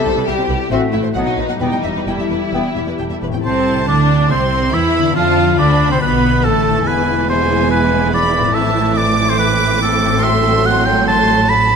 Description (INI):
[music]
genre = classical, dramatic, fast romantic movement for symphony orchestra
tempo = 141 BPM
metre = 4/4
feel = rubato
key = E minor, A minor from 3.4 s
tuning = A4 = 440 Hz
[part]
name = rich symphonic violin section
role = second line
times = 0.0-11.8 s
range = A3 to A4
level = -22 LUFS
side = left 3 dB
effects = none
[part]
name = silver concert flute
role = second line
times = 0.0-2.8 s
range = E5 to G5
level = -27 LUFS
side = equal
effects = none
[part]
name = clear symphonic viola section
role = accompaniment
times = 0.0-11.8 s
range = E3 to F4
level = -20 LUFS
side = right 2 dB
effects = none
[part]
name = concert harp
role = arpeggios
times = 0.0-11.8 s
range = A2 to E5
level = -22 LUFS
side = left 11 dB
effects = none
[part]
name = rich symphonic violin section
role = melody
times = 0.1-11.8 s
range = B4 to D6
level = -23 LUFS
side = left 2 dB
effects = none
[part]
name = rich symphonic cello section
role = bass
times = 0.1-11.8 s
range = E2 to F3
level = -21 LUFS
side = right 3 dB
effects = none
[part]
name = rich symphonic double bass section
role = bass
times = 0.1-11.8 s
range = E1 to F2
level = -22 LUFS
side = right 4 dB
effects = none
[part]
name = warm clarinet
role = second line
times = 0.7-2.7 s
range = B3 to C4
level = -26 LUFS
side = left 1 dB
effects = none
[part]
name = clear oboe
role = second line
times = 3.5-11.8 s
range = A4 to B5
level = -17 LUFS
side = right 2 dB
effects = none
[sound]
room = moderate scoring stage reverb, RT60 2.0 s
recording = none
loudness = -12 LUFS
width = side -6 dB against mid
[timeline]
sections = 0.0-3.4 A section; 3.4-11.8 B section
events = none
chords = 0.0 C; 0.7 F#m7b5/A; 1.2 B; 1.6 Em; 3.4 Am/C; 5.2 Dm; 6.9 E; 8.6 Am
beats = 0.28 0.72 1.16 | 1.62 2.08 2.54 2.99 | 3.44 3.88 4.31 4.74 | 5.17 5.59 6.01 6.44 | 6.87 7.29 7.71 8.14 | 8.56 8.97 9.39 9.82 | 10.23 10.65 11.07 11.49